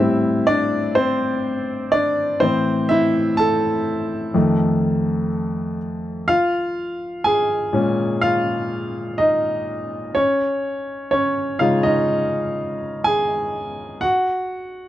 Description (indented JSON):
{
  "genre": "pop",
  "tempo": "62 BPM",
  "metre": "4/4",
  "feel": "straight",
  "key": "A minor, Bb minor from 6.3 s",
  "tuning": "A4 = 439 Hz",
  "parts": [
    { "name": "clear baby grand piano", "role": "solo", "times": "0.0-14.9 s", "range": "F2 to A5", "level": "-18 LUFS", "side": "equal", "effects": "none" }
  ],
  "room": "light reverb",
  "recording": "dry, close 1970s-style studio recording, faint mains hum",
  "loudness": "-18 LUFS",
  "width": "side -13 dB against mid",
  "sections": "0.0-6.3 A section; 6.3-14.9 A section",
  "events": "grand piano solo 0.0-6.3, 6.3-14.9",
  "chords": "0.0 Am7; 2.4 Am; 4.4 F7; 6.3 Bbm7; 10.2 Dbsus2; 14.0 N.C."
}